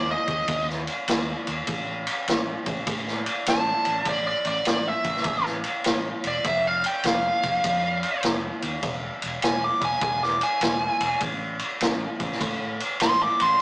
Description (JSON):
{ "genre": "blues rock power trio and southern rock", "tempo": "101 BPM", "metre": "4/4", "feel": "swing 66% on 8ths", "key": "A minor", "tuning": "A4 = 441 Hz", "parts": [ { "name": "biting lead guitar", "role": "second line", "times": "0.0-13.6 s", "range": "D5 to D6", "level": "-23 LUFS", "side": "right 1 dB", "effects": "overdrive" }, { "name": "fingered electric bass", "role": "bass", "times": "0.0-13.5 s", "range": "E1 to A2", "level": "-35 LUFS", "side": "equal", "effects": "none" }, { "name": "vintage drum kit", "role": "drums", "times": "0.3-13.5 s", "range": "kick drum, ride cymbal, snare drum", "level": "-25 LUFS", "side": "equal", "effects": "none" } ], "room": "light reverb", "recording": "rough rehearsal-room recording, tube saturation, small speaker sound", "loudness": "-22 LUFS", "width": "side -24 dB against mid", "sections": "0.0-13.6 A section", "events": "lead electric guitar solo 0.0-13.6", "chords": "0.0 N.C.; 1.7 A5; 6.4 N.C.; 8.8 E; 11.2 N.C.", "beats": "0.48 1.08 | 1.68 2.27 2.87 3.47 | 4.06 4.66 5.26 5.85 | 6.45 7.05 7.64 8.24 | 8.83 9.43 10.03 10.62 | 11.22 11.81 12.41 13.01 | 13.60" }